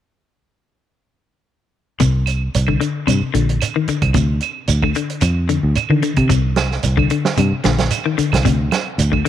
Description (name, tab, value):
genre	afrobeat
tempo	112 BPM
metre	4/4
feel	straight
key	C minor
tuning	A4 = 440 Hz
part	clean electric guitar	arpeggios	2.0-9.3 s	C3 to Eb3	-20 LUFS	left 7 dB	none
part	fingered electric bass	bass	2.0-9.2 s	Bb1 to D3	-17 LUFS	equal	none
part	warm soul drum kit	drums	2.0-9.3 s	hi-hat, kick drum, snare drum	-21 LUFS	right 4 dB	none
part	shekere	percussion	2.0-9.1 s	none	-26 LUFS	right 6 dB	none
part	claves	percussion	2.3-9.3 s	none	-26 LUFS	right 16 dB	none
room	light reverb, small room ambience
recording	1960s-style stereo with parts hard left and right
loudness	-15 LUFS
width	side -11 dB against mid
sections	2.0-9.3 A section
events	none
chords	2.0 Csus2; 4.2 Dm7; 6.3 Csus2; 8.5 D7(no3)